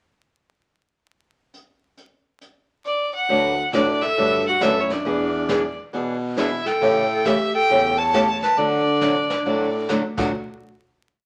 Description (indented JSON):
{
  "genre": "country, western swing",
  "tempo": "136 BPM",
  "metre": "4/4",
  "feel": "swing 65% on 8ths",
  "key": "D major",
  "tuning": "A4 = 440 Hz",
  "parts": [
    { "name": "jazz brush drum kit", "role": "drums", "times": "1.5-10.2 s", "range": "brushed snare drum, crash cymbal, hi-hat, kick drum, snare drum", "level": "-35 LUFS", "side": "equal", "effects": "none" },
    { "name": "clear fiddle", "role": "melody", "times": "2.9-9.9 s", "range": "C#5 to A5", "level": "-24 LUFS", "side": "equal", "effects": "none" },
    { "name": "picked old ladder-braced acoustic guitar", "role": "accompaniment", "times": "3.3-10.3 s", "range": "C#3 to B4", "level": "-25 LUFS", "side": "equal", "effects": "none" },
    { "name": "breathy baritone saxophone", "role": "bass", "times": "3.3-10.3 s", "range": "D2 to D3", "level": "-29 LUFS", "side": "equal", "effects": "none" },
    { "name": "warm clarinet", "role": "second line", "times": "3.8-9.9 s", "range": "D4 to C#5", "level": "-28 LUFS", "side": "equal", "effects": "none" }
  ],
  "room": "wet studio reverb, RT60 0.8 s",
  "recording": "vinyl crackle",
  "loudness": "-21 LUFS",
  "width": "mono",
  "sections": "1.5-3.3 pickup bar; 3.3-10.3 A section; 10.3-11.3 final hit",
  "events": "none",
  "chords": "1.5 N.C.; 3.3 D6; 5.1 E7; 6.8 A7; 8.6 D; 10.3 N.C."
}